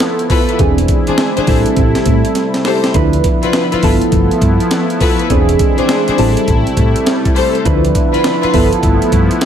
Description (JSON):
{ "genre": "R&B, new jack swing", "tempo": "102 BPM", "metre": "4/4", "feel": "swing 64% on 16ths", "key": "unclear", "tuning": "A4 = 441 Hz", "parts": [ { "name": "soft electric-piano-like synth keys", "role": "accompaniment", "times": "0.0-9.5 s", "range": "E3 to B4", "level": "-15 LUFS", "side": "right 2 dB", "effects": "chorus, phaser" }, { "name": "sweeping resonant pad", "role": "sustained chords", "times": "0.0-9.5 s", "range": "C3 to E4", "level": "-21 LUFS", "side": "equal", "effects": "chorus" }, { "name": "breakbeat sampler-style drum kit", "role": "drums", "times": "0.0-9.5 s", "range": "hi-hat, kick drum, snare drum", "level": "-16 LUFS", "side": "equal", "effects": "none" }, { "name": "warm studio string section", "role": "stabs", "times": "0.3-8.6 s", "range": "D4 to C5", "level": "-19 LUFS", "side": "left 6 dB", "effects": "tape echo" }, { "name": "hollow-body short-scale fingered electric bass", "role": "bass", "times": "0.6-9.3 s", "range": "E1 to A2", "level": "-16 LUFS", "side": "equal", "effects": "none" } ], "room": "light reverb", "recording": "none", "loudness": "-10 LUFS", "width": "side -9 dB against mid", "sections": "0.0-9.5 A section", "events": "drum fill 2.4-2.9", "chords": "0.0 G13 (rootless); 0.6 E7b13; 1.5 Am7; 2.9 Dm69; 3.8 G13; 5.3 E7b13; 6.2 Am7; 7.7 Dm69; 8.5 G13" }